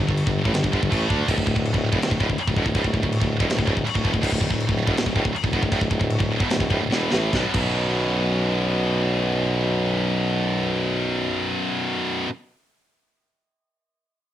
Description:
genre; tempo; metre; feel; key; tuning
heavy metal; 140-164 BPM; 4/4; straight; B minor; A4 = 440 Hz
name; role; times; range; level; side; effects
heavy high-gain guitar; riff; 0.0-12.3 s; B1 to D4; -26 LUFS; left 7 dB; distortion, cassette tape
heavy high-gain guitar; riff; 0.0-12.3 s; B1 to D4; -27 LUFS; right 9 dB; distortion, cassette tape
warm tuba; bass; 0.0-11.5 s; D1 to D2; -25 LUFS; equal; none
tight metal drum kit; drums; 0.0-7.7 s; china cymbal, crash cymbal, kick drum, snare drum; -24 LUFS; equal; cassette tape
room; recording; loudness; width
light reverb; home recording on cassette; -20 LUFS; side -11 dB against mid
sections
0.0-7.3 A section; 7.3-10.8 B section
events
slowing down 4.2-7.3; drum fill 6.9-7.3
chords
0.0 G5; 1.3 D5; 7.3 B5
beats
0.18 0.55 0.92 | 1.28 1.65 2.02 2.38 | 2.75 3.12 3.48 3.85 | 4.22 4.58 4.95 5.33 | 5.71 6.10 6.50 6.91 | 7.33 7.76 8.19 8.62 | 9.04 9.47 9.90 10.33

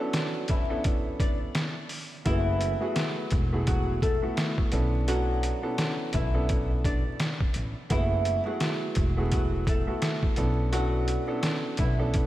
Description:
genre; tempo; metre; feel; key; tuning
hip hop, boom-bap hip-hop; 85 BPM; 4/4; swing 57% on 16ths; unclear; A4 = 439 Hz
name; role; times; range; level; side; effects
flamenco guitar; melody; 0.0-12.1 s; E3 to D5; -33 LUFS; equal; wide subtle chorus, high-pass filter, low-pass filter, diffuse ambient delay
dark upright piano; accompaniment; 0.0-12.3 s; A3 to A4; -32 LUFS; right 1 dB; high-pass filter, low-pass filter
trip hop sampler-style drum kit; drums; 0.1-12.3 s; hi-hat, kick drum, snare drum; -28 LUFS; equal; overdrive
upright bass; bass; 2.3-12.3 s; E1 to B1; -28 LUFS; equal; none
room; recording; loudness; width
moderate lush hall reverb, RT60 3.0 s; dreamy mix soaked in reverb, vinyl crackle; -25 LUFS; side -14 dB against mid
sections
0.0-12.3 A section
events
break 0.0-2.3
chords
0.0 Bm11; 2.3 F#m11; 4.7 Bm11; 7.9 F#m11; 10.4 Bm11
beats
0.14 0.85 1.55 | 2.26 2.97 3.67 4.38 | 5.08 5.79 6.50 7.20 | 7.91 8.61 9.32 10.03 | 10.73 11.44 12.14

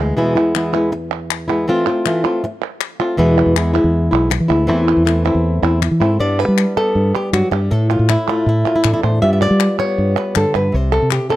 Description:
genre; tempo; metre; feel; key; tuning
flamenco; 159 BPM; 4/4; straight; unclear; A4 = 440 Hz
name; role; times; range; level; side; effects
flamenco guitar; melody; 0.0-11.4 s; E2 to E5; -16 LUFS; equal; none
fingered electric bass; bass; 0.0-0.1, 3.2-11.2 s; B1 to G3; -16 LUFS; equal; none
palmas hand claps; percussion; 0.4-11.4 s; none; -22 LUFS; right 3 dB; none
room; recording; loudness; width
small room reverb; dry, close 1970s-style studio recording; -13 LUFS; side -14 dB against mid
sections
0.2-6.2 A section; 6.2-11.4 B section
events
none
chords
0.2 E; 1.7 F/E; 3.2 E; 4.7 Am/E; 6.2 G; 7.7 A5; 9.2 G7; 10.7 C5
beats
| 0.17 0.55 0.93 1.30 | 1.68 2.06 2.43 2.81 | 3.18 3.56 3.94 4.31 | 4.69 5.07 5.44 5.82 | 6.20 6.58 6.95 7.33 | 7.71 8.09 8.47 8.84 | 9.22 9.60 9.98 10.36 | 10.73 11.11

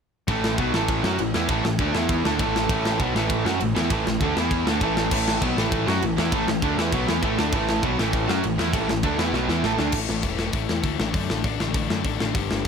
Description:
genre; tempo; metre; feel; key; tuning
punk rock; 199 BPM; 4/4; straight; unclear; A4 = 441 Hz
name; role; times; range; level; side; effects
cranked stack guitar; riff; 0.3-12.7 s; G2 to F#4; -27 LUFS; left 13 dB; overdrive
fuzz guitar; riff; 0.3-9.9 s; A2 to F#4; -29 LUFS; equal; distortion
overdriven electric guitar; riff; 0.3-9.9 s; A2 to F#4; -26 LUFS; right 13 dB; none
fuzz picked electric bass; bass; 0.3-12.7 s; E1 to F#2; -28 LUFS; equal; overdrive
tight metal drum kit; drums; 0.3-12.7 s; crash cymbal, hi-hat, kick drum, ride cymbal, snare drum; -26 LUFS; equal; none
room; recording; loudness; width
little or no reverb; none; -20 LUFS; side -6 dB against mid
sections
0.3-9.9 A section; 9.9-12.7 B section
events
drum fill 9.3-9.9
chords
0.3 A; 1.9 E5; 2.3 A; 4.4 E5; 4.7 A; 9.9 A5; 11.0 D/A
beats
| 0.29 0.59 0.89 1.19 | 1.50 1.80 2.10 2.40 | 2.70 3.01 3.31 3.61 | 3.91 4.21 4.52 4.82 | 5.12 5.42 5.72 6.03 | 6.33 6.63 6.93 7.23 | 7.53 7.83 8.13 8.44 | 8.74 9.04 9.34 9.64 | 9.94 10.24 10.55 10.85 | 11.15 11.45 11.75 12.05 | 12.36 12.66

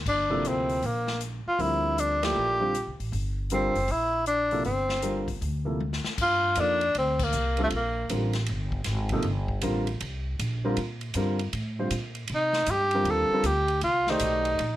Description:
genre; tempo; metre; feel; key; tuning
modal jazz; 157 BPM; 4/4; swing 65% on 8ths; G minor from 6.2 s; A4 = 441 Hz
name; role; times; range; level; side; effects
upright bass; bass; 0.0-14.8 s; F#1 to C3; -31 LUFS; equal; none
breathy tenor saxophone; melody; 0.1-8.1, 12.3-14.8 s; A3 to A4; -25 LUFS; equal; none
swinging big-band drum kit; drums; 0.1-14.7 s; crash cymbal, hi-hat, kick drum, ride cymbal, snare drum, toms; -36 LUFS; left 2 dB; none
dark upright piano; accompaniment; 0.3-14.6 s; C3 to D5; -30 LUFS; equal; none
room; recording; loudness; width
light reverb; none; -24 LUFS; side -14 dB against mid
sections
0.0-6.2 A section; 6.2-14.8 B section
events
band accent 2.2, 7.1; drum fill 5.8-6.2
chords
0.1 Gm11; 6.2 Gm9; 12.3 Cm9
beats
| 0.06 0.44 0.82 1.21 | 1.59 1.97 2.36 2.74 | 3.12 3.51 3.89 4.27 | 4.66 5.04 5.42 5.80 | 6.19 6.57 6.95 7.33 | 7.72 8.10 8.48 8.86 | 9.24 9.63 10.01 10.39 | 10.77 11.15 11.54 11.92 | 12.30 12.68 13.06 13.45 | 13.83 14.21 14.59

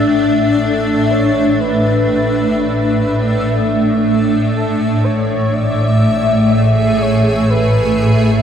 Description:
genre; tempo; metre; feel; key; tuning
ambient; 61 BPM; 4/4; straight; A major; A4 = 440 Hz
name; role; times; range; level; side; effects
granular cloud pad; sustained chords; 0.0-8.4 s; A2 to E5; -12 LUFS; equal; built-in reverb
clear chamber double bass section; bass; 0.0-8.4 s; A1; -24 LUFS; equal; none
breathy flute-like synth lead; melody; 0.6-8.2 s; A4 to E5; -21 LUFS; equal; wide subtle chorus, ping-pong delay
room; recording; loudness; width
wet lush hall reverb, RT60 2.7 s; dreamy mix soaked in reverb; -12 LUFS; side -8 dB against mid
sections
0.0-8.4 A section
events
none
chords
0.0 Bm7/A; 4.5 A5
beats
| 0.60 1.59 2.57 3.56 | 4.54 5.52 6.51 7.49

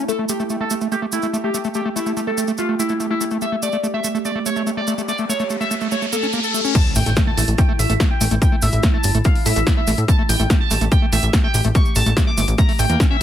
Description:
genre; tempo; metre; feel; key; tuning
psychedelic trance; 144 BPM; 4/4; straight; unclear; A4 = 441 Hz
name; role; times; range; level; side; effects
pulsing gated texture; sustained chords; 0.0-13.2 s; A3 to G4; -28 LUFS; right 2 dB; chorus, built-in reverb, sidechain pumping
overdriven acid bass; riff; 0.0-13.2 s; A3 to C#4; -25 LUFS; moving between left 6 dB and right 5 dB; auto-pan, sidechain pumping, tape echo
overdriven synth lead; melody; 0.1-13.2 s; E4 to D6; -24 LUFS; equal; phaser, sidechain pumping, ping-pong delay
cabasa; percussion; 0.1-13.1 s; none; -28 LUFS; right 5 dB; none
riser and impact; sound effects; 4.5-8.4 s; none; -28 LUFS; equal; none
electronic kick drum; drums; 6.8-13.1 s; none; -17 LUFS; equal; overdrive, small room ambience
techno drum kit; drums; 6.8-13.1 s; crash cymbal, hi-hat, snare drum; -24 LUFS; left 1 dB; overdrive, low-pass filter on hats, small room ambience, low-pass filter on cymbals, low-pass filter on snare
plucky analog bass; bass; 7.0-13.0 s; G1 to A2; -18 LUFS; equal; none
room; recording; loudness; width
little or no reverb; none; -16 LUFS; side -11 dB against mid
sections
0.0-6.8 A section; 6.8-13.2 B section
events
filter sweep on acid bass 0.0-6.8; riser 4.5-6.8; drop 6.8-13.2; impact 6.8-8.4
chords
0.0 A5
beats
| 0.08 0.50 0.92 1.33 | 1.75 2.17 2.58 3.00 | 3.42 3.83 4.25 4.67 | 5.08 5.50 5.92 6.33 | 6.75 7.17 7.58 8.00 | 8.42 8.83 9.25 9.67 | 10.08 10.50 10.92 11.33 | 11.75 12.17 12.58 13.00

